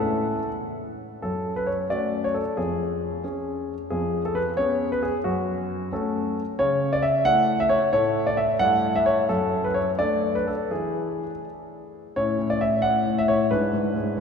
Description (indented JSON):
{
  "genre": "classical-period piano sonatina",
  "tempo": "89 BPM (dotted quarters)",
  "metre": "6/8",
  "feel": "rubato",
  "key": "F# minor, A major from 6.6 s",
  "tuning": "A4 = 440 Hz",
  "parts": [
    { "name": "clear grand piano", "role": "solo", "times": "0.0-14.2 s", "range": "E#2 to F#5", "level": "-22 LUFS", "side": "left 1 dB", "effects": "none" }
  ],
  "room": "wet church reverb, RT60 3.6 s",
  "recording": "recorded in a church or concert hall",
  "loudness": "-22 LUFS",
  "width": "side -6 dB against mid",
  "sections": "0.0-1.2 A section; 1.2-12.2 B section; 12.2-14.2 A section",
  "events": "none",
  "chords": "0.0 A; 1.2 F#m; 2.6 C#/E#; 3.9 C#7/E#; 5.3 F#m; 6.6 A/C#; 7.9 A; 8.6 A5/G; 9.3 D/F#; 10.7 N.C.; 12.2 A; 13.5 E7/G#",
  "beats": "0.51 | 1.22 1.90 | 2.58 3.25 | 3.92 4.59 | 5.26 5.92 | 6.59 7.26 | 7.93 8.61 | 9.29 10.00 | 10.71 11.44 | 12.16 12.84 | 13.52 14.20"
}